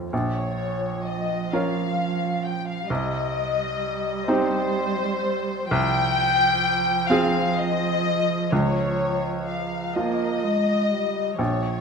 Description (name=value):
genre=neoclassical piano and strings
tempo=42 BPM (dotted quarters)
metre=6/8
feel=rubato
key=Bb dorian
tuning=A4 = 440 Hz
part: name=bright upright piano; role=accompaniment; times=0.0-11.8 s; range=Bb1 to Bb4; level=-26 LUFS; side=right 1 dB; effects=none
part: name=muted studio violin section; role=melody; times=0.1-11.8 s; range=C5 to G5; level=-24 LUFS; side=left 4 dB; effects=none
part: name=muted cello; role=second line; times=0.1-11.8 s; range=F3 to Bb3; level=-28 LUFS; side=right 5 dB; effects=none
room=moderate large studio reverb, RT60 1.3 s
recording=minimal, uncompressed stereo recording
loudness=-21 LUFS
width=side -5 dB against mid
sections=0.1-11.8 A section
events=none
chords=0.1 Bbm; 2.9 Cm; 5.7 Fm/C; 8.5 Db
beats=| 0.12 1.52 | 2.89 4.27 | 5.70 7.09 | 8.51 9.95 | 11.39